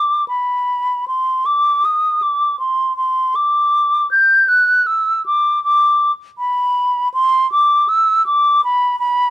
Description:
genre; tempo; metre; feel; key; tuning
classical, baroque-style fantasia for unaccompanied flute; 80 BPM; 4/4; rubato; unclear; A4 = 439 Hz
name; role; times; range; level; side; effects
mellow hollow silver concert flute; solo; 0.0-9.3 s; B5 to G6; -13 LUFS; equal; none
room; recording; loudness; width
light reverb; dark, warm production; -13 LUFS; side -16 dB against mid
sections
0.0-9.3 A section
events
none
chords
none

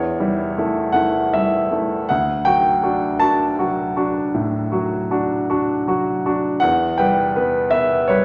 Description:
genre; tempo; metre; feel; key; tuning
classical, romantic nocturne for solo piano; 53 BPM (dotted quarters); 12/8; rubato; D major; A4 = 441 Hz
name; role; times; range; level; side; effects
clear grand piano; solo; 0.0-8.2 s; D2 to A5; -19 LUFS; equal; none
room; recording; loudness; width
wet recital hall reverb, RT60 1.5 s; none; -19 LUFS; mono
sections
0.0-8.2 A section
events
none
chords
0.0 A7/E; 2.1 D; 6.6 Em

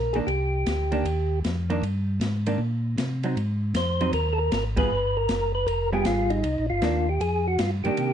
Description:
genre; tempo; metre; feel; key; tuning
soul jazz organ trio; 156 BPM; 4/4; swing 66% on 8ths; C minor; A4 = 440 Hz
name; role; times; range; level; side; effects
percussive tonewheel organ; melody; 0.0-1.4, 3.8-8.1 s; Eb4 to C5; -26 LUFS; equal; slow rotary speaker, plate reverb
mellow tonewheel organ; bass; 0.0-8.1 s; F1 to C3; -26 LUFS; equal; overdrive, slow rotary speaker
open jazz drum kit; drums; 0.1-8.1 s; hi-hat, kick drum, ride cymbal, snare drum; -32 LUFS; left 1 dB; none
vintage hollow-body jazz guitar; accompaniment; 0.2-8.1 s; Eb3 to Ab4; -28 LUFS; right 2 dB; none
room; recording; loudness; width
light reverb; dark, warm production, nothing above 10.9 kHz; -23 LUFS; side -9 dB against mid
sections
0.0-8.1 A section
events
band accent 4.7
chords
0.3 Cm9; 3.4 Ab; 4.9 G7b9; 6.4 Cm9; 7.2 Fsus2

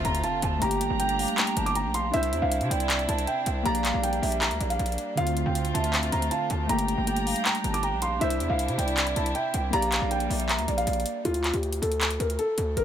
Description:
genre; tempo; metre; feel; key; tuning
hip hop, trap; 158 BPM; 4/4; half-time; unclear; A4 = 440 Hz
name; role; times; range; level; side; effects
dark concert grand piano; melody; 0.0-12.8 s; F4 to D6; -29 LUFS; right 1 dB; ping-pong delay
gliding portamento lead; second line; 0.0-11.2 s; D5 to A5; -33 LUFS; right 4 dB; chorus, ping-pong delay
warbly lo-fi synth keys; accompaniment; 0.0-11.3 s; D3 to D5; -32 LUFS; left 1 dB; chorus
dark studio string section; sustained chords; 0.0-11.2 s; C3 to Bb5; -34 LUFS; equal; none
distorted 808-style bass; bass; 0.0-12.8 s; G1 to C3; -29 LUFS; equal; distortion
trap drum kit; drums; 0.0-12.8 s; handclaps, hi-hat; -30 LUFS; left 1 dB; none
impact; sound effects; 0.0-0.6 s; none; -43 LUFS; equal; none
room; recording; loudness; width
little or no reverb; none; -24 LUFS; side -9 dB against mid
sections
0.0-11.3 A section; 11.3-12.8 B section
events
impact 0.0-0.6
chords
0.0 Dm7; 0.6 Gmadd9; 2.1 Cadd9; 3.7 Bb6; 5.2 Dm7; 6.7 Gmadd9; 8.2 Cadd9; 9.7 Bb6; 11.3 D5

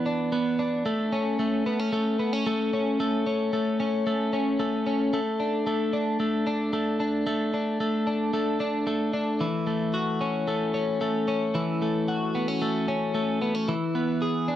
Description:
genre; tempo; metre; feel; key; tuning
indie pop; 112 BPM; 4/4; straight; A major; A4 = 440 Hz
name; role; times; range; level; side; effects
twelve-string electric guitar; solo; 0.0-14.6 s; E3 to G#4; -24 LUFS; left 1 dB; none
room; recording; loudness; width
wet small room reverb, RT60 0.6 s; dark, warm production; -24 LUFS; side -11 dB against mid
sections
0.0-9.4 A section; 9.4-14.6 B section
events
none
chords
0.0 E5; 0.9 A; 5.1 Asus4; 9.4 F#m7; 13.7 E

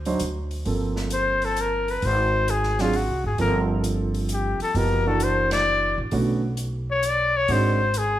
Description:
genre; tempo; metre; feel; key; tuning
jazz, small-group swing and bop; 132 BPM; 3/4; swing 68% on 8ths; G minor; A4 = 441 Hz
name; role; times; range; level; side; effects
upright bass; bass; 0.0-8.2 s; F#1 to D2; -26 LUFS; right 1 dB; none
warm grand piano; accompaniment; 0.1-7.8 s; D3 to C5; -27 LUFS; right 3 dB; none
open jazz drum kit; drums; 0.1-8.1 s; hi-hat, ride cymbal, snare drum; -36 LUFS; left 1 dB; none
warm trumpet; melody; 1.1-8.2 s; F4 to D5; -22 LUFS; left 3 dB; none
room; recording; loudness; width
moderate recital hall reverb, RT60 1.3 s; recorded in a church or concert hall; -20 LUFS; side -13 dB against mid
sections
0.0-6.1 A section; 6.1-8.2 B section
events
band accent 5.4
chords
0.0 D7b9; 0.7 Gm11; 2.0 Ab7; 3.4 Gm11; 4.8 F#7b13; 6.1 Bm9; 7.5 G#7#11

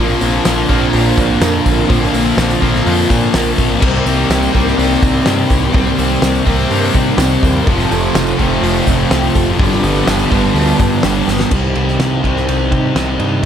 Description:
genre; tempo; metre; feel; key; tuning
rock, shoegaze and dream pop; 125 BPM; 4/4; straight; C dorian; A4 = 440 Hz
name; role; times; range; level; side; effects
electric guitar through a small old amp; arpeggios; 0.0-13.5 s; F3 to Bb4; -22 LUFS; right 1 dB; ensemble chorus, slapback echo
crunchy overdriven guitar; riff; 0.0-13.5 s; F2 to G4; -20 LUFS; right 9 dB; reverse reverb
distorted electric guitar; riff; 0.0-11.5 s; F2 to C4; -19 LUFS; equal; overdrive
thick fuzz guitar; riff; 0.0-13.4 s; F2 to C4; -18 LUFS; left 8 dB; distortion, lush chorus
growling picked electric bass; bass; 0.0-13.4 s; F1 to C3; -19 LUFS; equal; overdrive
tambourine; percussion; 0.1-11.5 s; none; -34 LUFS; right 12 dB; none
loose indie drum kit; drums; 0.2-13.5 s; crash cymbal, hi-hat, kick drum, ride cymbal, snare drum; -17 LUFS; equal; none
room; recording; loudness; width
moderate recital hall reverb, RT60 1.6 s, small room ambience; none; -11 LUFS; side -9 dB against mid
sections
0.0-11.5 A section; 11.5-13.5 B section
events
drum fill 11.3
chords
0.0 Bbadd9; 3.8 Cm7; 7.7 Fadd9; 9.6 G7; 11.5 Cm

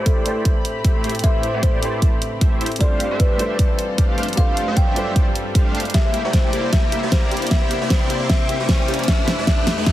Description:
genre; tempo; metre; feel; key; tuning
future bass; 153 BPM; 4/4; swing 54% on 16ths, half-time; A minor; A4 = 440 Hz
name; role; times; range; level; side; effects
dark grand piano; accompaniment; 0.0-6.0 s; G3 to C5; -29 LUFS; right 1 dB; sidechain pumping, digital delay
warm studio string section; sustained chords; 0.0-9.9 s; F2 to B5; -30 LUFS; left 1 dB; sidechain pumping
supersaw chords; riff; 0.0-9.9 s; A3 to A5; -26 LUFS; equal; analog chorus, sidechain pumping, low-pass filter
riser; sound effects; 2.4-9.9 s; none; -30 LUFS; equal; none
kalimba; melody; 0.1-9.9 s; A4 to G5; -26 LUFS; left 2 dB; sidechain pumping, digital delay
electronic kick drum; drums; 0.1-9.9 s; none; -18 LUFS; equal; studio reverb
pop drum kit; drums; 0.1-9.9 s; hi-hat, snare drum; -24 LUFS; equal; studio reverb
soft round pluck; arpeggios; 5.9-9.9 s; G4 to G5; -32 LUFS; right 2 dB; chorus, sidechain pumping, digital delay
room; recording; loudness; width
light reverb, small room ambience; heavily compressed radio sound; -16 LUFS; side -14 dB against mid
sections
0.0-9.9 A section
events
build-up 0.0-9.9; filter sweep on supersaw synth 0.0-9.9; riser 2.4-9.9; drum fill 5.9-9.9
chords
0.0 Am7; 2.8 G9sus4; 5.9 C7; 9.1 Fmaj9#11

